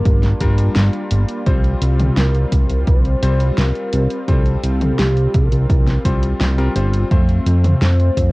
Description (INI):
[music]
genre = synthwave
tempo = 85 BPM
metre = 4/4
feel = straight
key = unclear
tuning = A4 = 445 Hz
[part]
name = warm velvety synth lead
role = melody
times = 0.0-8.3 s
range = G4 to C5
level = -26 LUFS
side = equal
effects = chorus, cassette tape, tape echo
[part]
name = warm analog pad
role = sustained chords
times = 0.0-8.3 s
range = G3 to A5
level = -27 LUFS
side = left 1 dB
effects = chorus, tremolo, sidechain pumping, cassette tape
[part]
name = bright electric grand piano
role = stabs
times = 0.0-8.3 s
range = G3 to C5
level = -26 LUFS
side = left 2 dB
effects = cassette tape
[part]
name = fat analog bass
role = bass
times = 0.1-8.3 s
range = G1 to F2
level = -16 LUFS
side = equal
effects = tube saturation, sidechain pumping
[part]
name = electronic kick drum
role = drums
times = 0.1-8.3 s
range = none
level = -16 LUFS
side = equal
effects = studio reverb, cassette tape
[part]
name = pop drum kit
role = drums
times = 0.1-8.3 s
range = hi-hat, snare drum, toms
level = -22 LUFS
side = equal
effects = studio reverb, cassette tape
[sound]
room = light reverb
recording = home recording on cassette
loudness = -14 LUFS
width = side -22 dB against mid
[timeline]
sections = 0.0-8.3 A section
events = none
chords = 0.0 Gm7; 1.5 Csus4; 7.1 F